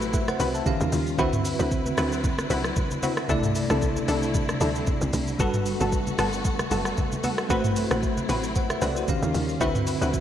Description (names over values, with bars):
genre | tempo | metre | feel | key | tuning
amapiano | 114 BPM | 4/4 | swing 55% on 16ths | unclear | A4 = 440 Hz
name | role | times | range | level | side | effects
bell-like tine electric piano | accompaniment | 0.0-10.2 s | C3 to A5 | -28 LUFS | equal | fast stereo tremolo
dark studio string section | sustained chords | 0.0-10.2 s | C3 to B4 | -33 LUFS | left 1 dB | sidechain pumping
punchy chord stab | stabs | 0.0-10.2 s | B3 to B4 | -30 LUFS | left 1 dB | chorus, digital delay
tight log drum bass | bass | 0.0-10.2 s | F#1 to D#2 | -30 LUFS | equal | none
smooth R&B drum kit | drums | 0.0-10.2 s | hi-hat, kick drum, rim click, shaker, toms | -28 LUFS | equal | gated reverb
congas | percussion | 0.1-10.1 s | none | -34 LUFS | left 1 dB | none
room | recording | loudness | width
moderate lush hall reverb, RT60 1.7 s, digital ambience | bright 1980s-style digital production | -22 LUFS | side -10 dB against mid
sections
0.0-10.2 A section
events
none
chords
0.0 Am69; 0.7 D#9; 1.2 D13; 3.3 C69; 5.4 Gmaj9; 7.5 Am69; 9.1 D#9; 9.6 D13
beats
0.14 0.66 | 1.19 1.71 2.24 2.77 | 3.29 3.82 4.34 4.87 | 5.40 5.92 6.45 6.98 | 7.50 8.03 8.56 9.08 | 9.61 10.13